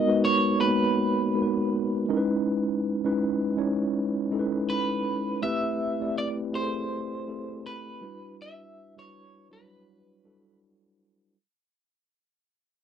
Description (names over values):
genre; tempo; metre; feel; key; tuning
R&B; 81 BPM; 4/4; swing 57% on 16ths; unclear; A4 = 440 Hz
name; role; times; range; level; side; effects
electric guitar at the edge of break-up; melody; 0.0-10.6 s; B4 to E5; -29 LUFS; equal; tremolo, slapback echo
mellow tine electric piano; accompaniment; 0.0-11.4 s; F#3 to D5; -26 LUFS; equal; medium stereo tremolo
room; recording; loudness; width
light reverb; dry, close 1970s-style studio recording; -24 LUFS; side -8 dB against mid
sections
0.0-11.3 A section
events
fade-out 0.0-11.3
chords
0.0 G#m9; 2.1 C#m9; 5.4 Am9; 8.0 Em9